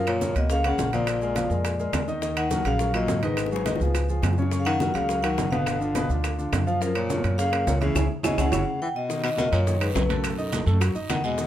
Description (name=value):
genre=Afro-Cuban jazz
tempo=209 BPM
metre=4/4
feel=straight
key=F# major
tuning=A4 = 442 Hz
part: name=vibraphone with medium hard mallets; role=melody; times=0.0-11.5 s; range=A4 to G5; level=-28 LUFS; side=left 1 dB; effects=none
part: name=breathy baritone saxophone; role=second line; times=0.0-11.5 s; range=F#2 to E3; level=-30 LUFS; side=left 3 dB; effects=none
part: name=warm concert grand piano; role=accompaniment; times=0.0-11.5 s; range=B2 to E#5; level=-30 LUFS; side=left 1 dB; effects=none
part: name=upright bass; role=bass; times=0.0-11.5 s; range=F#1 to F#2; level=-26 LUFS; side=right 1 dB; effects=none
part: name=claves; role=percussion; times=0.1-11.2 s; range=none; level=-36 LUFS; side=left 4 dB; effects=none
part: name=congas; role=percussion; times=0.1-11.5 s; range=none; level=-33 LUFS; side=equal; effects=none
part: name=maracas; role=percussion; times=0.1-11.5 s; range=none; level=-41 LUFS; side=right 7 dB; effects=none
part: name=timbales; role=percussion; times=0.1-11.2 s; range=none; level=-33 LUFS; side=right 8 dB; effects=none
part: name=bongos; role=percussion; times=0.2-11.5 s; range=none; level=-36 LUFS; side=left 6 dB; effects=none
part: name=guiro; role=percussion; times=9.1-11.5 s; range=none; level=-40 LUFS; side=right 6 dB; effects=none
room=light reverb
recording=close, detailed microphones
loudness=-22 LUFS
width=side -12 dB against mid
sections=0.0-9.1 A section; 9.1-11.5 B section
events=drum fill 3.4-4.5, 8.7-9.1; band accent 8.0-9.1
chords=0.0 F#maj7; 1.1 A#7; 2.2 D#m9; 3.4 G#m7; 3.9 C#; 4.5 F#6; 5.7 G7; 6.8 F#maj7; 8.0 C#m; 8.5 F#5; 9.1 Bmaj7; 10.2 B7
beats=0.21 0.50 0.79 | 1.07 1.36 1.65 1.93 | 2.22 2.51 2.80 3.08 | 3.37 3.66 3.94 4.23 | 4.52 4.81 5.09 5.38 | 5.67 5.95 6.24 6.53 | 6.81 7.10 7.39 7.67 | 7.96 8.24 8.53 8.81 | 9.10 9.38 9.67 9.96 | 10.24 10.53 10.81 11.10 | 11.38